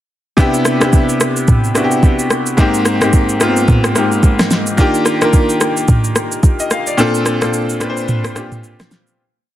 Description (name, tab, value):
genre	amapiano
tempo	109 BPM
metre	4/4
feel	swing 58% on 16ths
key	unclear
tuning	A4 = 440 Hz
part	bright concert grand piano	accompaniment	0.4-9.2 s	Ab2 to F5	-14 LUFS	left 1 dB	none
part	smooth R&B drum kit	drums	0.4-9.2 s	kick drum, rim click, shaker, snare drum, toms	-14 LUFS	equal	overdrive
room	light reverb, digital ambience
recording	dense, heavily limited modern master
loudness	-11 LUFS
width	side -13 dB against mid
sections	0.4-9.2 groove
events	break 7.0-9.2; fade-out 7.0-9.2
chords	0.4 Cmaj9; 2.6 Abmaj9; 4.8 Ebmaj9; 7.0 Bbmaj9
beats	| 0.38 0.93 1.48 2.03 | 2.58 3.13 3.68 4.23 | 4.78 5.33 5.88 6.43 | 6.98 7.54 8.09 8.64